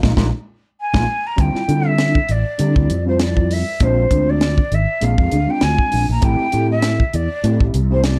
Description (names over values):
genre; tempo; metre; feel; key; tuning
electric jazz fusion; 99 BPM; 4/4; swing 55% on 16ths; D minor; A4 = 440 Hz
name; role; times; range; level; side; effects
overdriven tine electric piano; accompaniment; 0.0-8.2 s; G3 to A4; -25 LUFS; equal; ensemble chorus
fretless electric bass; bass; 0.0-8.2 s; Ab1 to D3; -20 LUFS; equal; ensemble chorus
tight funk drum kit; drums; 0.0-8.2 s; hi-hat, kick drum, snare drum; -21 LUFS; equal; none
congas; percussion; 0.0-1.1 s; none; -26 LUFS; equal; none
breathy mellow jazz flute; melody; 0.8-8.2 s; C5 to Bb5; -24 LUFS; equal; none
room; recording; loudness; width
light reverb; dark, warm production; -17 LUFS; mono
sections
0.0-1.4 A section; 1.4-8.2 B section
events
band accent 0.0-1.4; tine electric piano fill 0.2-1.4; drum fill 0.8-1.4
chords
0.0 Bb7sus4; 1.4 Dm11; 3.8 Bb9; 6.2 Am7